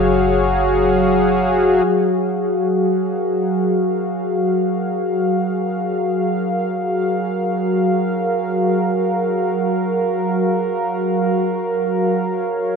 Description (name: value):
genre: ambient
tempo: free time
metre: none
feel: none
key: F# major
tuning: A4 = 440 Hz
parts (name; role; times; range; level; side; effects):
- warm analog pad; sustained chords; 0.0-12.8 s; F#3 to E#5; -16 LUFS; equal; chorus
- warm sub bass; bass; 0.0-1.8 s; F#1; -26 LUFS; equal; none
room: wet scoring stage reverb, RT60 2.1 s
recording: worn, warbling old tape, cassette tape, warbly pitch drift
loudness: -16 LUFS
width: side -5 dB against mid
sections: 0.0-1.9 A section; 1.9-12.8 B section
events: filter sweep on analog synth pad 1.9-12.8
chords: 0.0 F#maj7